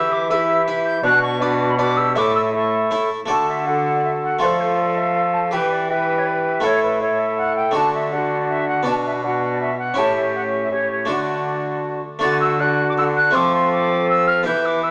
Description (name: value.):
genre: classical, renaissance-style consort dance.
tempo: 162 BPM.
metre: 3/4.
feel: straight.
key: D major.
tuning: A4 = 440 Hz.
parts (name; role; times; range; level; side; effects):
silver concert flute; melody; 0.0-14.9 s; B4 to A6; -24 LUFS; equal; none.
mellow tenor recorder; second line; 0.0-14.9 s; F#4 to B4; -27 LUFS; equal; none.
harpsichord; accompaniment; 0.0-14.9 s; A2 to E5; -26 LUFS; equal; none.
mellow bassoon; accompaniment; 0.0-14.9 s; C4 to G4; -26 LUFS; equal; none.
rich cello; bass; 0.0-14.9 s; A2 to F3; -28 LUFS; equal; none.
room: moderate stone room reverb, RT60 1.2 s.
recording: none.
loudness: -19 LUFS.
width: mono.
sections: 0.0-3.3 A section; 3.3-12.2 B section; 12.2-14.9 B section.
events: none.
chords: 0.0 Em; 1.0 Bm; 2.2 A5; 3.3 D; 4.4 F; 5.5 Em; 6.6 A5; 7.8 D; 8.9 Bm; 10.0 A7; 11.1 D; 13.3 F.